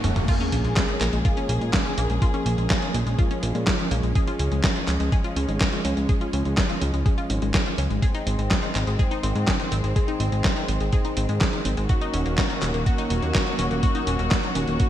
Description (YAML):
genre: italo disco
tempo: 124 BPM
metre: 4/4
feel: straight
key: Bb minor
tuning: A4 = 440 Hz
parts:
  - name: dark studio string section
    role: sustained chords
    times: 0.0-14.9 s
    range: Eb3 to Ab4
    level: -28 LUFS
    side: equal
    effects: none
  - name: analog pluck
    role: arpeggios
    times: 0.0-14.9 s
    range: Ab3 to Ab4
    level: -31 LUFS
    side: left 3 dB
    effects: chorus, phaser, vintage 12-bit sampler grit, ping-pong delay
  - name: fat analog bass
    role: bass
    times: 0.0-14.8 s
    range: Eb1 to Bb2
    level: -25 LUFS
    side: equal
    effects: tube saturation
  - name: dusty soul sampler-style drum kit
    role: drums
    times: 0.0-14.9 s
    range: crash cymbal, handclaps, hi-hat, snare drum, toms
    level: -27 LUFS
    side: equal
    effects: small room reverb, gated reverb
  - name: riser, sub drop and swell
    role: sound effects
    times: 0.0-2.2, 14.8-14.9 s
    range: none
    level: -31 LUFS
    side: equal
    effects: none
  - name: electronic kick drum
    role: drums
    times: 0.3-14.9 s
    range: none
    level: -23 LUFS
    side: equal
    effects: small room reverb
room: light reverb, digital ambience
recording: bright 1980s-style digital production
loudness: -21 LUFS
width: side -12 dB against mid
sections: 0.3-14.9 A section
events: drum fill 0.0; riser 0.0; impact 0.3-2.2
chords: 0.3 Bbm7; 4.2 Db; 8.0 Ab; 11.9 Ebm7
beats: | 0.28 0.77 1.25 1.73 | 2.22 2.70 3.19 3.67 | 4.15 4.64 5.12 5.61 | 6.09 6.57 7.06 7.54 | 8.03 8.51 8.99 9.48 | 9.96 10.44 10.93 11.41 | 11.90 12.38 12.86 13.35 | 13.83 14.31 14.80